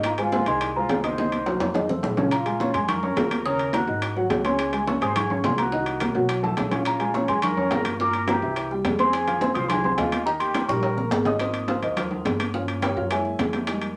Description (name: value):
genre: Afro-Cuban jazz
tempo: 211 BPM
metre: 4/4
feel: straight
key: Ab major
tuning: A4 = 440 Hz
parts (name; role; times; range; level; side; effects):
- dark upright piano; accompaniment; 0.0-13.9 s; Bb2 to Eb6; -29 LUFS; equal; none
- upright bass; bass; 0.0-14.0 s; Ab1 to G2; -36 LUFS; equal; none
- bongos; percussion; 0.0-13.8 s; none; -36 LUFS; equal; none
- congas; percussion; 0.0-14.0 s; none; -32 LUFS; equal; none
- timbales; percussion; 0.0-14.0 s; none; -32 LUFS; equal; none
- worn celesta; melody; 0.1-11.2 s; Ab5 to Eb6; -30 LUFS; equal; none
- mellow concert flute; second line; 0.1-11.2 s; F4 to C5; -32 LUFS; equal; none
room: wet studio reverb, RT60 0.5 s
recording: none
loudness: -24 LUFS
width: mono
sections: 0.0-2.3 A section; 2.3-11.4 B section; 11.4-14.0 C section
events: drum fill 1.2-2.3, 6.0-6.9, 10.7-11.4; upright piano solo 11.4-14.0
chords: 0.0 Ab69; 1.2 Cm7b5; 1.7 F7; 2.3 Bbm7; 3.5 Ebm7; 4.0 Ab5; 4.6 Dbmaj7; 5.7 Cm7b5; 6.3 Bsus2; 6.9 Bbm7; 8.0 Gm7; 8.6 C; 9.1 Fm7; 10.3 Eb7; 11.4 Ab69; 12.5 Gm7b5; 13.1 Gb9